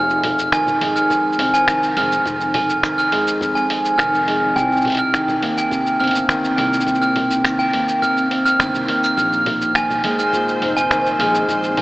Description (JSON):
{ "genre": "folktronica", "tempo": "104 BPM", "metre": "4/4", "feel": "straight", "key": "F minor", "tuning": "A4 = 440 Hz", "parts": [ { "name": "glockenspiel with brass mallets", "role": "second line", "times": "0.0-11.8 s", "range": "G5 to F6", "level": "-18 LUFS", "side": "right 1 dB", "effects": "analog delay" }, { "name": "fingerpicked plugged-in steel-string acoustic guitar", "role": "arpeggios", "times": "0.0-11.8 s", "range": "F2 to Eb4", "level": "-21 LUFS", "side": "equal", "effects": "vintage 12-bit sampler grit, analog delay" }, { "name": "upright bass", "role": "bass", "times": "0.0-11.8 s", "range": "F1 to Eb2", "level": "-30 LUFS", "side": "equal", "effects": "none" }, { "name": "lo-fi sampler-style drum kit", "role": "drums", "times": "0.1-11.8 s", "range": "congas, finger snaps, hi-hat, shaker", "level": "-24 LUFS", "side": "equal", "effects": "none" }, { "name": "electronic kick drum", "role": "drums", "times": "0.5-11.6 s", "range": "none", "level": "-32 LUFS", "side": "equal", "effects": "none" }, { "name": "backwards swelling texture", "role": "texture", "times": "9.7-11.8 s", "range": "C4 to C5", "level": "-26 LUFS", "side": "left 1 dB", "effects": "built-in reverb, lush chorus" } ], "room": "wet huge ambient reverb, RT60 4.7 s", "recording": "dreamy mix soaked in reverb, AM radio sound", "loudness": "-15 LUFS", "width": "side -20 dB against mid", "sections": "0.0-11.8 A section", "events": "none", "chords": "0.0 Fm7; 4.6 Cm7; 9.2 Bb7sus4", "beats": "0.53 1.10 1.68 | 2.26 2.83 3.41 3.99 | 4.56 5.14 5.72 6.29 | 6.87 7.45 8.03 8.60 | 9.18 9.76 10.33 10.91 | 11.49" }